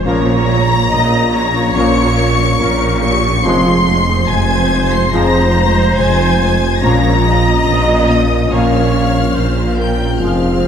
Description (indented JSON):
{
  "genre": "cinematic, hybrid orchestral and electronic film score",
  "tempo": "71 BPM",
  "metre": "4/4",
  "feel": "straight",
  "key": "unclear",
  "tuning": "A4 = 442 Hz",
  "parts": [
    { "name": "warm symphonic viola section", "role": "accompaniment", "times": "0.0-10.7 s", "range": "G4 to Eb5", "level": "-20 LUFS", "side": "right 2 dB", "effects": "none" },
    { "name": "hollow soft pad", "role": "sustained chords", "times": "0.0-10.7 s", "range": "F3 to Db5", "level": "-21 LUFS", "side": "left 1 dB", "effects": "chorus" },
    { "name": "mellow French horn section", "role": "sustained chords", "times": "0.0-10.5 s", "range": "C4 to F4", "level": "-23 LUFS", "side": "left 4 dB", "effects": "none" },
    { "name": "rich studio double bass section", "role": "bass", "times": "0.0-10.7 s", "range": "F1 to Bb1", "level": "-18 LUFS", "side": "right 3 dB", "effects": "none" },
    { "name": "rich symphonic cello section", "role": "bass", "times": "0.0-10.7 s", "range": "F2 to Bb2", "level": "-19 LUFS", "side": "right 2 dB", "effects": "none" },
    { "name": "saturated sub bass", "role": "bass", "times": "0.0-10.7 s", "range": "F1 to Bb1", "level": "-22 LUFS", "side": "left 1 dB", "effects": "none" },
    { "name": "rich symphonic violin section", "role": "melody", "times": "0.1-10.7 s", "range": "Eb6 to Db7", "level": "-22 LUFS", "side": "left 4 dB", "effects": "none" },
    { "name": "warm symphonic violin section", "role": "second line", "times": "0.1-10.7 s", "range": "Eb5 to Db6", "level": "-19 LUFS", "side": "left 3 dB", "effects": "none" },
    { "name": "warm trombone section", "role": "sustained chords", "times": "0.1-10.5 s", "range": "F3 to Bb3", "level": "-24 LUFS", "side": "right 1 dB", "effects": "none" },
    { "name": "harp-like synth pluck", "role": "arpeggios", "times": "0.1-10.7 s", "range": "F3 to Bb4", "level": "-22 LUFS", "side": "left 3 dB", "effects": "chorus, digital delay" },
    { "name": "swell", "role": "sound effects", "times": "10.5-10.7 s", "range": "none", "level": "-23 LUFS", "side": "right 4 dB", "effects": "none" }
  ],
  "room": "wet concert hall reverb, RT60 2.5 s",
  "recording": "faint mains hum",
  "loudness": "-11 LUFS",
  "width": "side -8 dB against mid",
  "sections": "0.0-10.7 A section",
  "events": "swell 10.5",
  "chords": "0.1 Bbm; 3.4 Fm; 6.8 Bbm"
}